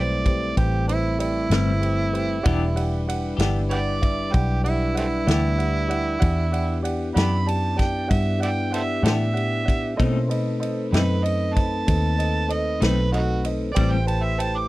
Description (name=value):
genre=slow blues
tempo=64 BPM (dotted quarters)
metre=12/8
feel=straight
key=E minor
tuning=A4 = 440 Hz
part: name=overdriven harmonica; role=second line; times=0.0-14.7 s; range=A3 to D6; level=-27 LUFS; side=right 3 dB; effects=none
part: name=dark concert grand piano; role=accompaniment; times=0.0-14.6 s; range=G4 to A5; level=-31 LUFS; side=right 3 dB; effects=none
part: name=mellow tonewheel organ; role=sustained chords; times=0.0-14.7 s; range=G3 to C5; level=-29 LUFS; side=left 3 dB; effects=slow rotary speaker
part: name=vintage muted fingered electric bass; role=bass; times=0.0-14.7 s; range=E1 to B2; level=-23 LUFS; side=equal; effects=none
part: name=natural country drum kit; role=drums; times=0.3-14.5 s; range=kick drum, ride cymbal, snare drum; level=-25 LUFS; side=equal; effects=none
part: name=semi-hollow electric guitar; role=accompaniment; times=1.5-14.0 s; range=A2 to G4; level=-28 LUFS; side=left 5 dB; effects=tremolo
room=little or no reverb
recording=dry, close 1970s-style studio recording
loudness=-20 LUFS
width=side -18 dB against mid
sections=0.0-14.7 A section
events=harmonica solo 0.0-14.7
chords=0.0 Am7; 2.4 Em7; 10.0 B7b9; 13.8 Am7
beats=0.56 1.51 | 2.45 3.39 4.33 5.28 | 6.22 7.16 8.10 9.05 | 9.99 10.93 11.88 12.82 | 13.76